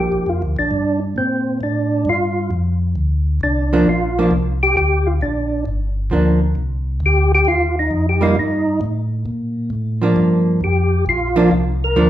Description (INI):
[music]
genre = soul jazz organ trio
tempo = 133 BPM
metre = 4/4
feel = swing 67% on 8ths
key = G minor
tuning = A4 = 440 Hz
[part]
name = percussive tonewheel organ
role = melody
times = 0.0-12.1 s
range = C4 to Bb4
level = -18 LUFS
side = equal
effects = slow rotary speaker, chorus vibrato
[part]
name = archtop guitar, miked and amplified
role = accompaniment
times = 0.0-0.6, 3.7-12.1 s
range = F3 to Eb4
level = -16 LUFS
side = right 1 dB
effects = none
[part]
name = mellow tonewheel organ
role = bass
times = 0.0-12.1 s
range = G1 to Bb2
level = -19 LUFS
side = equal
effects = slow rotary speaker
[sound]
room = wet large studio reverb, RT60 1.1 s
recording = band playing live in one room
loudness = -15 LUFS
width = side -12 dB against mid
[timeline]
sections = 0.0-12.1 A section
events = none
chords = 0.0 Gm7; 6.6 Cm7; 10.2 Gm7